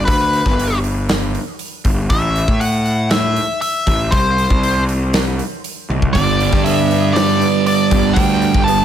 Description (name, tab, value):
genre	quiet-loud alternative rock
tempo	119 BPM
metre	4/4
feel	straight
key	unclear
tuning	A4 = 440 Hz
part	nasal lead guitar with a parked wah	melody	0.0-8.8 s	B4 to A5	-19 LUFS	left 2 dB	overdrive, analog delay
part	fuzz picked electric bass	bass	0.0-8.8 s	G1 to A2	-18 LUFS	left 1 dB	overdrive
part	big rock drum kit	drums	0.1-8.8 s	hi-hat, kick drum, snare drum, toms	-19 LUFS	equal	none
part	electric guitar through a small old amp	arpeggios	6.1-8.8 s	G2 to D4	-22 LUFS	left 2 dB	lush chorus
part	thick fuzz guitar	riff	6.1-8.8 s	G2 to G3	-16 LUFS	right 12 dB	distortion
room	light reverb, studio ambience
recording	none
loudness	-13 LUFS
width	side -10 dB against mid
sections	0.0-8.8 A section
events	drum fill 5.9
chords	0.0 G; 2.1 A5; 4.1 N.C.; 6.1 G